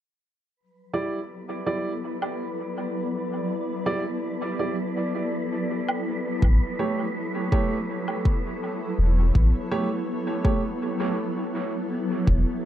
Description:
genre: ambient dub.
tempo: 82 BPM.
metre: 4/4.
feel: straight.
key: E dorian.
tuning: A4 = 440 Hz.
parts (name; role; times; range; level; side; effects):
granular cloud pad; sustained chords; 1.4-12.7 s; F#3 to D5; -29 LUFS; equal; built-in reverb, vintage 12-bit sampler grit.
wind-like tuned noise texture; texture; 1.3-10.8 s; B4; -36 LUFS; left 1 dB; built-in reverb.
warm upright piano; stabs; 0.9-10.6 s; G3 to D5; -30 LUFS; right 3 dB; low-pass filter, dub echo.
woodblock; drums; 2.2-8.2 s; none; -32 LUFS; right 2 dB; dub echo.
soft dub sub bass; bass; 6.4-12.4 s; E1 to A1; -19 LUFS; equal; tube saturation.
electronic kick drum; drums; 6.4-12.4 s; none; -23 LUFS; equal; none.
room: light reverb, studio reverb.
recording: dark, warm production.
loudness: -24 LUFS.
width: side -12 dB against mid.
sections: 0.6-12.3 A section.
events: break 10.8-12.3.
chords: 0.6 Em7; 6.4 A7.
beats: | 0.57 1.30 2.04 2.77 | 3.50 4.23 4.96 5.69 | 6.42 7.16 7.89 8.62 | 9.35 10.08 10.81 11.55 | 12.28.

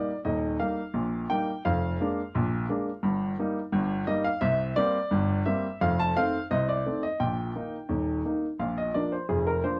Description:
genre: ragtime piano.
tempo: 86 BPM.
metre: 2/4.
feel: straight.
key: Eb major.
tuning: A4 = 440 Hz.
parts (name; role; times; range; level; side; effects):
clear baby grand piano; solo; 0.0-9.8 s; Eb1 to A5; -28 LUFS; equal; none.
room: moderate booth ambience, RT60 0.2 s.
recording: worn, warbling old tape, cassette tape, warbly pitch drift.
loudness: -28 LUFS.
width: mono.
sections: 0.0-9.8 A section.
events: none.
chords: 0.0 Eb; 1.6 Bb7/F; 3.0 Eb/G; 4.4 C5; 5.8 F7; 7.2 Eb/Bb; 8.6 Bb.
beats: | 0.25 0.95 | 1.65 2.34 | 3.04 3.73 | 4.42 5.12 | 5.81 6.51 | 7.21 7.91 | 8.61 9.31.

